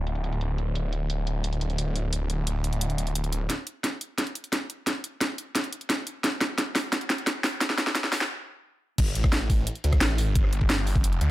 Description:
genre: dark technical drum and bass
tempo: 175 BPM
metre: 4/4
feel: straight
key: unclear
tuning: A4 = 438 Hz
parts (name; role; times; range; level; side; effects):
- snarling distorted saw bass; bass; 0.0-3.5, 9.0-11.3 s; D1 to D2; -26 LUFS; equal; distortion, overdrive, sidechain pumping
- drum and bass drum kit; drums; 0.1-11.3 s; crash cymbal, hi-hat, rim click, snare drum; -27 LUFS; equal; overdrive
- electronic kick drum; drums; 3.5-11.0 s; none; -25 LUFS; equal; overdrive, high-pass filter on kick, high-pass filter on room
room: little or no reverb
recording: high-pass filter, low-pass filter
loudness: -24 LUFS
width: side -16 dB against mid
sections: 0.0-3.5 A section; 3.5-9.0 B section; 9.0-11.3 C section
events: filter sweep 0.0-3.5; build-up 3.5-9.0; drum fill 3.5-8.3; stop 8.3-9.0; drop 9.0-11.3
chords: none

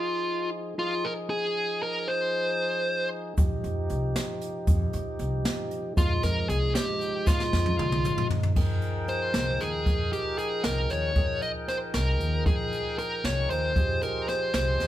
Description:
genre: progressive instrumental, band music in an uneven meter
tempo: 231 BPM (eighths)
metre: 5/8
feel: straight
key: F minor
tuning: A4 = 440 Hz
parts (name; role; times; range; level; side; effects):
- dark smooth lead guitar; melody; 0.0-3.1, 6.0-14.9 s; F4 to Eb5; -28 LUFS; equal; overdrive
- tonewheel organ; accompaniment; 0.0-14.9 s; F3 to G5; -34 LUFS; equal; slow rotary speaker
- upright bass; bass; 3.4-14.9 s; C2 to F2; -30 LUFS; equal; none
- jazz brush drum kit; drums; 3.4-14.9 s; crash cymbal, hi-hat, kick drum, snare drum, toms; -28 LUFS; equal; none
- egg shaker; percussion; 3.4-8.3 s; none; -48 LUFS; left 7 dB; none
room: moderate large studio reverb, RT60 1.1 s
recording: band playing live in one room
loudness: -25 LUFS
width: side -13 dB against mid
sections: 0.0-8.6 A section; 8.6-14.9 B section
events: drum fill 7.3-8.6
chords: 0.0 Fm7; 8.6 Fm11

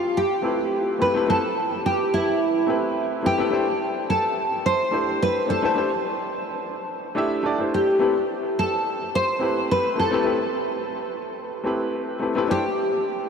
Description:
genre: chillout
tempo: 107 BPM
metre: 4/4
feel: swing 55% on 16ths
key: A minor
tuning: A4 = 440 Hz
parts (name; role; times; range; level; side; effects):
- nylon-string guitar; melody; 0.0-13.3 s; E4 to C5; -23 LUFS; equal; analog chorus, diffuse ambient delay
- warm baby grand piano; accompaniment; 0.4-12.6 s; A3 to E5; -25 LUFS; moving between left 4 dB and right 3 dB; auto-pan, diffuse ambient delay
room: wet huge ambient reverb, RT60 7.4 s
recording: dreamy mix soaked in reverb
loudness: -21 LUFS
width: side -6 dB against mid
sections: 0.0-13.3 A section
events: none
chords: 0.0 Am9; 3.5 C69; 8.0 Am9; 12.5 C69

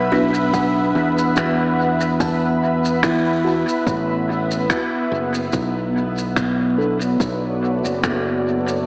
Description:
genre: ambient dub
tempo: 72 BPM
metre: 4/4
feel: swing 55% on 16ths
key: B minor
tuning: A4 = 440 Hz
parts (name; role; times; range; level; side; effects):
- granular cloud pad; sustained chords; 0.0-8.9 s; B3 to B5; -20 LUFS; equal; built-in reverb
- modern bright fingered electric bass; bass; 0.0-8.9 s; F#1 to E2; -22 LUFS; equal; none
- buzzing kalimba; arpeggios; 0.1-7.1 s; D4 to A5; -25 LUFS; equal; dub echo
- mellow tine electric piano; stabs; 0.1-7.0 s; B3 to A4; -28 LUFS; equal; none
- shaker and finger snaps; drums; 0.3-8.8 s; none; -27 LUFS; equal; dub echo
- electronic kick drum; drums; 0.5-8.2 s; none; -25 LUFS; equal; overdrive
room: light reverb, studio reverb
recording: echo-heavy mix, vinyl crackle, AM radio sound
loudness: -17 LUFS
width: side -33 dB against mid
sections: 0.0-8.9 A section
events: none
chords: 0.0 Bm7

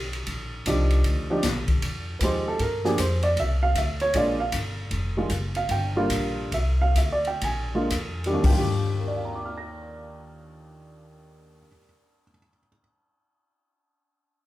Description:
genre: jazz piano trio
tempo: 109-155 BPM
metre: 4/4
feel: swing 64% on 8ths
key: Eb major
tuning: A4 = 440 Hz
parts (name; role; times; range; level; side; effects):
- upright bass; bass; 0.0-11.7 s; F1 to G2; -26 LUFS; equal; none
- open jazz drum kit; drums; 0.1-8.6 s; hi-hat, kick drum, ride cymbal, snare drum, toms; -28 LUFS; left 1 dB; none
- warm baby grand piano; melody; 0.7-12.8 s; Eb2 to Bb6; -26 LUFS; right 1 dB; none
room: light reverb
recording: band playing live in one room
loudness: -22 LUFS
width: side -15 dB against mid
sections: 0.0-1.8 A section; 1.8-8.4 B section; 8.4-12.8 C section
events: slowing down 4.9-8.4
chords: 0.0 Ebmaj9; 1.8 Fm9; 2.6 Gm7; 3.4 Csus2; 4.1 Bb7; 4.9 N.C.; 5.7 Gm7; 6.5 Csus2; 7.4 Bb7; 8.4 Ebmaj9

